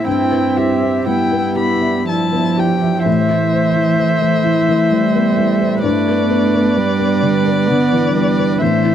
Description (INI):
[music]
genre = neoclassical piano and strings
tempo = 59-66 BPM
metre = 3/4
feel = rubato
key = A minor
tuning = A4 = 440 Hz
[part]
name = muted violin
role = melody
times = 0.0-8.9 s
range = D5 to B5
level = -20 LUFS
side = left 4 dB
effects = none
[part]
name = muted cello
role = second line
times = 0.0-8.9 s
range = E3 to C4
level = -17 LUFS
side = right 6 dB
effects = none
[part]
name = felt-muted upright piano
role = accompaniment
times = 0.0-8.9 s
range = G2 to E5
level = -18 LUFS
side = left 6 dB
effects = none
[part]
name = muted viola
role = accompaniment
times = 0.0-8.9 s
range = E4 to C5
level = -23 LUFS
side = right 3 dB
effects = none
[part]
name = sweeping resonant pad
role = sustained chords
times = 0.0-8.9 s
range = G3 to E5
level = -23 LUFS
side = right 1 dB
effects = wide subtle chorus
[sound]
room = light reverb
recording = dry, close 1970s-style studio recording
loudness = -13 LUFS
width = side -9 dB against mid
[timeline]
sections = 0.0-3.1 A section; 3.1-8.9 A section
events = none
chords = 0.1 Em/G; 3.1 Am; 5.8 G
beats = | 0.06 1.07 2.08 | 3.07 4.00 4.91 | 5.84 6.76 7.69 | 8.61